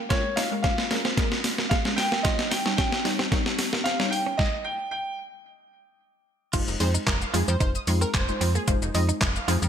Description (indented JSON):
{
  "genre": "dance-pop",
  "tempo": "112 BPM",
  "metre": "4/4",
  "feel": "straight",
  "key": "F minor",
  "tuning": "A4 = 440 Hz",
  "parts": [
    { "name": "wide unison pluck", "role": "accompaniment", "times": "0.0-9.7 s", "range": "G3 to Db5", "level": "-32 LUFS", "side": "left 1 dB", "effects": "wide subtle chorus, sidechain pumping" },
    { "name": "direct-recorded clean electric guitar", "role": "riff", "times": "0.0-9.6 s", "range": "Ab3 to F4", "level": "-35 LUFS", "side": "right 7 dB", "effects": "wide subtle chorus" },
    { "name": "clear concert grand piano", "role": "melody", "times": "0.1-5.2 s", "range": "Db5 to G5", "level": "-29 LUFS", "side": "equal", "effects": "ping-pong delay" },
    { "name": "detuned 8-bit digital drum machine", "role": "drums", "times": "0.1-9.7 s", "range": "crash cymbal, handclaps, hi-hat, kick drum, shaker, snare drum", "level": "-25 LUFS", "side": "equal", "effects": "gated reverb" },
    { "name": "wide unison pluck", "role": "arpeggios", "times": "6.5-9.6 s", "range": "F3 to Eb6", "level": "-36 LUFS", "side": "equal", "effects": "wide subtle chorus, sidechain pumping, ping-pong delay" },
    { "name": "slap-like FM bass", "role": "bass", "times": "6.5-9.7 s", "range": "F1 to F2", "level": "-25 LUFS", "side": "equal", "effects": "sidechain pumping" },
    { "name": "plucky unison lead", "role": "melody", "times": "6.8-9.0 s", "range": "Bb4 to Eb5", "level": "-33 LUFS", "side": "right 1 dB", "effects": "ping-pong delay" }
  ],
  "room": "light reverb, digital ambience",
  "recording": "bright 1980s-style digital production",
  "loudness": "-22 LUFS",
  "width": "side -8 dB against mid",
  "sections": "0.0-6.5 A section; 6.5-9.7 B section",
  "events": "build-up 0.0-6.5; drum fill 0.0-4.4; stop 4.4-6.5; drop 6.5-9.7",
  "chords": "0.0 Bbm7; 2.2 Eb7; 6.5 Fm7"
}